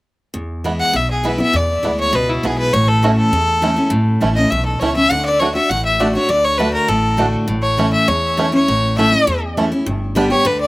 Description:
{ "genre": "bluegrass", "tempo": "202 BPM", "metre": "4/4", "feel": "straight", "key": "A major", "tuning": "A4 = 440 Hz", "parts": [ { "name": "picked steel-string acoustic guitar", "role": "accompaniment", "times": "0.3-10.7 s", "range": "E2 to G4", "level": "-18 LUFS", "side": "equal", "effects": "slapback echo" }, { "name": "upright bass", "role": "bass", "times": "0.3-10.7 s", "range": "G1 to E2", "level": "-22 LUFS", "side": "equal", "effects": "none" }, { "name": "bluegrass banjo", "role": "melody", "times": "0.7-10.2 s", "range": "A3 to G4", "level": "-22 LUFS", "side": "right 3 dB", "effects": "slapback echo" }, { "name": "clear fiddle", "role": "melody", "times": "0.8-10.7 s", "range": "E4 to F#5", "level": "-16 LUFS", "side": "left 1 dB", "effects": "slapback echo" } ], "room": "little or no reverb", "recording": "recorded outdoors, with no room sound", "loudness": "-14 LUFS", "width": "side -20 dB against mid", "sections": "0.3-9.9 A section", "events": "none", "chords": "0.3 E; 2.7 A; 5.1 D; 7.5 A; 9.9 G" }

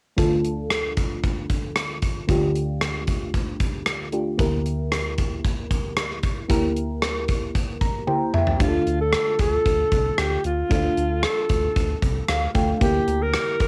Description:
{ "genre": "1980s-style pop", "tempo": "114 BPM", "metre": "4/4", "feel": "straight", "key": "D minor", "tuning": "A4 = 440 Hz", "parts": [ { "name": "mellow FM electric piano", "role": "accompaniment", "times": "0.2-13.7 s", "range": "D2 to Bb5", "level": "-28 LUFS", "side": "equal", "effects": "chorus, phaser, cassette tape" }, { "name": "gated 80s drum kit", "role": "drums", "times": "0.2-13.7 s", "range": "hi-hat, kick drum, rim click, toms", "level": "-26 LUFS", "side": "equal", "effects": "cassette tape" }, { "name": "breathy alto saxophone", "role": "melody", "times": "8.6-13.7 s", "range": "F4 to Bb4", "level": "-26 LUFS", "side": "equal", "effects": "cassette tape" }, { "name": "round analog bass", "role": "bass", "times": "8.6-13.7 s", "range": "C2 to D2", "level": "-29 LUFS", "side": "equal", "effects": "none" } ], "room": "moderate small room reverb, RT60 0.5 s", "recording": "home recording on cassette", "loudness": "-23 LUFS", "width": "mono", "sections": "0.2-8.6 A section; 8.6-13.7 B section", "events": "FM electric piano fill 7.5-8.6, 12.0-12.8; drum fill 8.1-8.6", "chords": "0.2 Dm; 4.4 Edim/D; 8.6 Dm; 12.8 Edim" }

